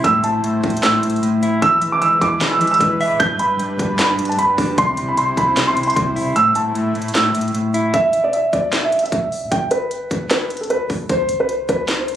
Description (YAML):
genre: hip hop, trap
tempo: 152 BPM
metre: 4/4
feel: half-time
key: A minor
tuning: A4 = 441 Hz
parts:
  - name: dark concert grand piano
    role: melody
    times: 0.0-12.2 s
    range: A4 to G6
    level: -17 LUFS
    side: right 1 dB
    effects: ping-pong delay
  - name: mellow electric guitar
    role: accompaniment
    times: 0.0-7.9 s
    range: G2 to E5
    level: -21 LUFS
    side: left 1 dB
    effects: spring reverb
  - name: warm analog pad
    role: sustained chords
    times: 0.0-7.9 s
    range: G3 to C5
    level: -25 LUFS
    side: equal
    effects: chorus
  - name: clean 808-style bass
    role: bass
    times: 0.0-12.2 s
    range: D1 to C3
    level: -35 LUFS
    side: equal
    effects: none
  - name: trap drum kit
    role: drums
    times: 0.0-12.1 s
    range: handclaps, hi-hat, kick drum, snare drum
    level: -22 LUFS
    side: equal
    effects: none
room: light reverb, digital ambience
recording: recorded on a phone in the room, club reverb, compression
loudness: -15 LUFS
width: side -11 dB against mid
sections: 0.0-7.9 A section; 7.9-12.2 B section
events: kick muted 6.4-7.9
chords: 0.0 Am; 1.6 E; 3.2 G; 4.8 C; 6.4 Am; 7.9 E5; 9.5 G; 11.1 N.C.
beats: | 0.04 0.44 0.83 1.23 | 1.62 2.02 2.41 2.81 | 3.20 3.60 3.99 4.38 | 4.78 5.17 5.57 5.96 | 6.36 6.75 7.15 7.54 | 7.94 8.33 8.73 9.12 | 9.52 9.91 10.31 10.70 | 11.10 11.49 11.88